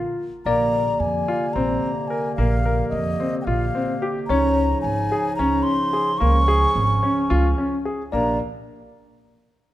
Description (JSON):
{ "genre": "contemporary instrumental, chamber music in an uneven meter", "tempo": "219 BPM (eighths)", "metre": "7/8", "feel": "straight", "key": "unclear", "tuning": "A4 = 440 Hz", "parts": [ { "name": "mellow woodwind section", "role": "sustained chords", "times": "0.0-8.4 s", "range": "C3 to F4", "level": "-29 LUFS", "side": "right 1 dB", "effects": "none" }, { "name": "warm grand piano", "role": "arpeggios", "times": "0.0-8.4 s", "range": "Bb3 to Bb4", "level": "-25 LUFS", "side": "left 2 dB", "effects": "none" }, { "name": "baroque flute", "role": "melody", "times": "0.5-8.4 s", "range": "Eb5 to Db6", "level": "-24 LUFS", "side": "equal", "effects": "none" }, { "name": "tine electric piano", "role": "second line", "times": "0.5-8.4 s", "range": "Db5 to D5", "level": "-27 LUFS", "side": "left 2 dB", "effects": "medium stereo tremolo" }, { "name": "upright bass", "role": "bass", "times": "0.5-8.4 s", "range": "Ab1 to F2", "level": "-23 LUFS", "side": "right 2 dB", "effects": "none" } ], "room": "moderate scoring stage reverb, RT60 1.6 s", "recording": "none", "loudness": "-19 LUFS", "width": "side -14 dB against mid", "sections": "0.5-8.1 A section; 8.1-9.7 B section", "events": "none", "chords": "0.5 Bbadd9; 4.3 Dbadd9; 8.1 Bbadd9", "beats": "0.18 | 0.46 0.73 1.01 1.28 1.55 1.83 2.10 | 2.38 2.65 2.92 3.20 3.47 3.75 4.02 | 4.29 4.57 4.84 5.12 5.39 5.66 5.94 | 6.21 6.49 6.76 7.03 7.31 7.58 7.86 | 8.13" }